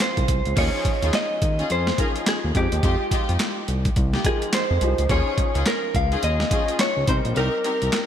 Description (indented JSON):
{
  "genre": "R&B, new jack swing",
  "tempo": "106 BPM",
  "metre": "4/4",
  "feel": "swing 61% on 16ths",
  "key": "unclear",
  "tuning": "A4 = 438 Hz",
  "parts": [
    { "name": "direct-recorded clean electric guitar", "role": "melody", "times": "0.0-8.1 s", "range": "G4 to F5", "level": "-25 LUFS", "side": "equal", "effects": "lush chorus, digital delay" },
    { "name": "warm baby grand piano", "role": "accompaniment", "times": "0.0-8.1 s", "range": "F3 to Bb4", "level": "-31 LUFS", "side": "left 4 dB", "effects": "ensemble chorus" },
    { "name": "boom bap sampler-style drum kit", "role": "drums", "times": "0.0-8.1 s", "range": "crash cymbal, handclaps, hi-hat, kick drum, snare drum", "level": "-24 LUFS", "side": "equal", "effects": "overdrive, gated reverb" },
    { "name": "smooth synth bass", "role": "bass", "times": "0.2-7.9 s", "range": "Bb1 to F2", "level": "-23 LUFS", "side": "equal", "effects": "none" },
    { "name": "warm symphonic string section", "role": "stabs", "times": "0.6-7.9 s", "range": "Ab3 to Bb4", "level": "-30 LUFS", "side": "left 1 dB", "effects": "none" }
  ],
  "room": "light reverb, digital ambience",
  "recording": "bright 1980s-style digital production",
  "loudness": "-19 LUFS",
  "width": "side -9 dB against mid",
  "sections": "0.6-8.1 A section",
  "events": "kick muted 7.4-8.1",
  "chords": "0.0 Ab69; 0.6 Eb9sus4; 2.5 Fm9; 5.1 Eb9sus4; 7.1 Cm7"
}